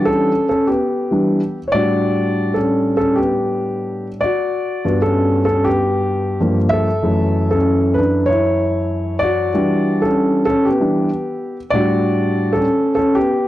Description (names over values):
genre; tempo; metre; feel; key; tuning
hip hop; 96 BPM; 4/4; swing 62% on 16ths; E dorian; A4 = 438 Hz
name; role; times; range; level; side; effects
dark grand piano; solo; 0.0-13.5 s; F#2 to E5; -15 LUFS; equal; none
room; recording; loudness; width
light reverb, small room ambience; dry, gritty hardware recording, cassette tape; -15 LUFS; side -14 dB against mid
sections
0.0-13.5 A section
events
grand piano solo 0.0-13.5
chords
0.0 Em7; 1.7 A13sus4; 4.5 Gmaj7; 6.4 Gm7; 7.0 F#m7; 9.5 Em9; 11.7 A13sus4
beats
0.17 0.80 1.42 | 2.05 2.67 3.30 3.92 | 4.55 5.17 5.80 6.42 | 7.05 7.67 8.30 8.92 | 9.55 10.17 10.80 11.42 | 12.05 12.67 13.30